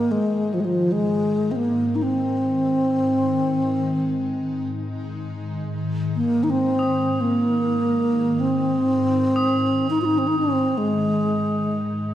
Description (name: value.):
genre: world meditative, free-time meditation music.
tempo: free time.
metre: none.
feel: none.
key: Ab major pentatonic.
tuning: A4 = 444 Hz.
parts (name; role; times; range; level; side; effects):
breathy bass flute; melody; 0.0-12.1 s; F3 to F4; -20 LUFS; equal; ping-pong delay.
glassy FM pad; drone; 0.0-12.1 s; Ab2 to Eb3; -28 LUFS; left 2 dB; ensemble chorus, built-in reverb.
crotales; texture; 6.8-12.1 s; Eb6; -29 LUFS; right 3 dB; none.
room: wet scoring stage reverb, RT60 1.6 s.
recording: worn, warbling old tape, cassette tape, warbly pitch drift.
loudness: -19 LUFS.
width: side -12 dB against mid.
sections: 0.0-12.1 A section.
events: none.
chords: none.